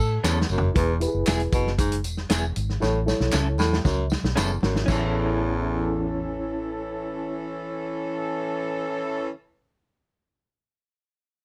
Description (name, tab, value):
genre	uptempo 1960s-style soul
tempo	116 BPM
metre	4/4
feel	straight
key	A major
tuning	A4 = 440 Hz
part	vintage muted fingered electric bass	bass	0.0-9.3 s	E1 to A2	-29 LUFS	equal	none
part	warm baritone saxophone	riff	0.2-6.4 s	E2 to B2	-30 LUFS	equal	none
part	electric guitar through a small old amp	stabs	0.2-9.3 s	B3 to A4	-33 LUFS	equal	tremolo
part	warm soul drum kit	drums	0.2-5.0 s	china cymbal, hi-hat, kick drum, snare drum, toms	-28 LUFS	equal	none
part	handclaps and tambourine	percussion	0.2-5.1 s	none	-36 LUFS	equal	none
part	mellow reed electric piano	accompaniment	0.7-9.3 s	E4 to C#5	-32 LUFS	equal	fast tremolo
part	warm horn section	second line	4.9-9.3 s	E3 to A4	-32 LUFS	equal	none
room	light reverb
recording	none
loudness	-25 LUFS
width	mono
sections	0.8-4.9 A section; 4.9-9.0 B section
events	drum fill 0.2-0.8, 2.8-4.9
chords	0.0 Aadd9; 0.8 E; 2.8 A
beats	0.24 | 0.75 1.27 1.78 2.30 | 2.82 3.33 3.85 4.37 | 4.88 5.40 5.92 6.43 | 6.95 7.47 7.98 8.50